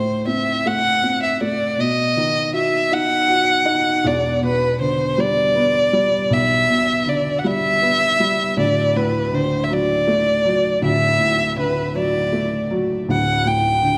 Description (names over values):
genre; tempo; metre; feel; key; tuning
pop; 53 BPM (dotted quarters); 6/8; straight; E minor; A4 = 439 Hz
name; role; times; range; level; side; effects
dark violin; melody; 0.0-14.0 s; B4 to G5; -20 LUFS; equal; delay
dark upright piano; accompaniment; 0.0-14.0 s; D1 to F#5; -23 LUFS; equal; none
room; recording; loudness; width
moderate recital hall reverb, RT60 1.7 s; none; -18 LUFS; mono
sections
0.0-4.0 A section; 4.0-14.0 B section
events
upright piano fill 2.9-4.0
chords
0.0 Am; 1.8 B; 4.0 Em7; 8.6 D